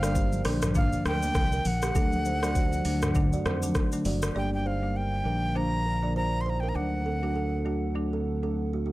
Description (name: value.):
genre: afrobeats.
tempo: 100 BPM.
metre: 4/4.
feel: swing 58% on 16ths.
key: unclear.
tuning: A4 = 440 Hz.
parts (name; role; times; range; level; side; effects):
breathy bright jazz flute; melody; 0.0-8.0 s; F5 to C6; -32 LUFS; equal; none.
marimba with medium mallets; accompaniment; 0.0-8.6 s; D3 to D4; -32 LUFS; left 1 dB; none.
hollow soft pad; sustained chords; 0.0-8.9 s; D3 to G5; -43 LUFS; equal; none.
kalimba; riff; 0.0-8.9 s; A3 to D5; -35 LUFS; right 6 dB; analog delay.
fingered electric bass; bass; 0.0-8.9 s; F#1 to F2; -30 LUFS; equal; none.
afro-pop drum kit; drums; 0.0-4.3 s; hi-hat, kick drum, rim click, shaker, toms; -28 LUFS; equal; none.
congas; percussion; 0.3-4.2 s; none; -37 LUFS; equal; none.
room: small room ambience.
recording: dry, gritty hardware recording.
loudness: -25 LUFS.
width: side -17 dB against mid.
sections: 0.0-4.4 A section; 4.4-8.9 B section.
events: none.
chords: 0.5 Bb; 2.0 D; 4.4 Gm; 5.3 Bb; 6.8 D.